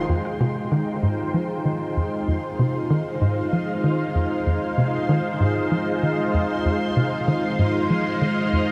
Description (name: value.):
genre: ambient, sequencer-driven space music.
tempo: 96 BPM.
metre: 4/4.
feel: straight.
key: F minor.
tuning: A4 = 441 Hz.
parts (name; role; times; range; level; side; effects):
string machine, full ensemble; sustained chords; 0.0-8.7 s; Ab3 to G5; -26 LUFS; equal; ensemble chorus.
bubbling stepped-filter texture; texture; 0.0-8.7 s; C6; -37 LUFS; equal; chorus, built-in reverb.
tight sequencer bass; riff; 0.1-8.7 s; F2 to F3; -26 LUFS; equal; lush chorus, delay.
room: wet huge ambient reverb, RT60 7.5 s.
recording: none.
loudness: -23 LUFS.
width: mono.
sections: 0.1-8.7 A section.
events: fade-in on synth texture 0.1-8.7; filter sweep on analog synth bass 0.1-8.7.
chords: 0.1 Fm7.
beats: | 0.09 0.71 1.34 1.96 | 2.59 3.21 3.84 4.46 | 5.09 5.71 6.34 6.96 | 7.59 8.21.